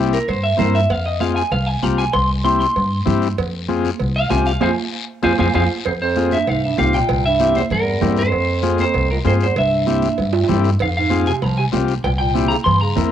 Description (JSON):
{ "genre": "latin, cumbia", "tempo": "194 BPM", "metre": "4/4", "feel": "straight", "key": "F harmonic minor", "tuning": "A4 = 441 Hz", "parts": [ { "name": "combo organ", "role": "accompaniment", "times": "0.0-13.1 s", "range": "C4 to Bb4", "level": "-22 LUFS", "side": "left 8 dB", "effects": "none" }, { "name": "upright bass", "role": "bass", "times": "0.0-13.1 s", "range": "C2 to G2", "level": "-20 LUFS", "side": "equal", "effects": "none" }, { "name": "clean electric guitar", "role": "melody", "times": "0.1-13.0 s", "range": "Bb4 to C6", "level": "-20 LUFS", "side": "right 1 dB", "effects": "spring reverb, cassette tape" }, { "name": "guiro", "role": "percussion", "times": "0.1-13.1 s", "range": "none", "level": "-34 LUFS", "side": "left 10 dB", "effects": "none" }, { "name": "cowbell and timbales", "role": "percussion", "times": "0.3-13.1 s", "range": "none", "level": "-26 LUFS", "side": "right 8 dB", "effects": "none" }, { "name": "congas", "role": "percussion", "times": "0.6-13.1 s", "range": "none", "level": "-26 LUFS", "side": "right 8 dB", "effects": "none" }, { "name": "warm bass clarinet", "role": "second line", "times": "5.9-13.0 s", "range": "Db2 to F3", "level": "-24 LUFS", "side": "right 6 dB", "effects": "none" } ], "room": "moderate small room reverb, RT60 0.5 s", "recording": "home recording on cassette", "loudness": "-15 LUFS", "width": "side -10 dB against mid", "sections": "0.0-5.9 A section; 5.9-13.1 B section", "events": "clean electric guitar solo 0.0-5.9; band accent 4.6-5.9; drum fill 4.9-5.9, 10.3-10.8", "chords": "0.0 C7; 0.9 Fm; 2.1 C; 3.4 Fm; 7.1 C7; 8.3 Fm; 9.6 C; 10.8 Fm; 12.0 C7" }